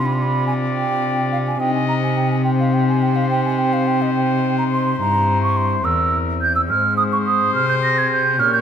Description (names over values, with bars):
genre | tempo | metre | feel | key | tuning
classical, baroque-style sonata movement with continuo | 71 BPM (dotted quarters) | 12/8 | straight | C minor | A4 = 440 Hz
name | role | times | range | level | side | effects
clear trumpet | melody | 0.0-8.6 s | Bb4 to Eb5 | -25 LUFS | left 6 dB | none
mellow hollow concert flute | second line | 0.0-8.6 s | Eb5 to Bb6 | -19 LUFS | right 3 dB | none
pipe organ, flutes | accompaniment | 0.0-8.6 s | E2 to Ab4 | -24 LUFS | left 4 dB | none
clear cello | bass | 0.0-8.6 s | E2 to C3 | -21 LUFS | equal | none
room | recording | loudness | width
wet scoring stage reverb, RT60 1.7 s | none | -16 LUFS | side -8 dB against mid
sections
0.0-8.6 A section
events
none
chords
0.0 G5/C; 1.6 Cm; 5.0 C7/G; 6.7 Ab6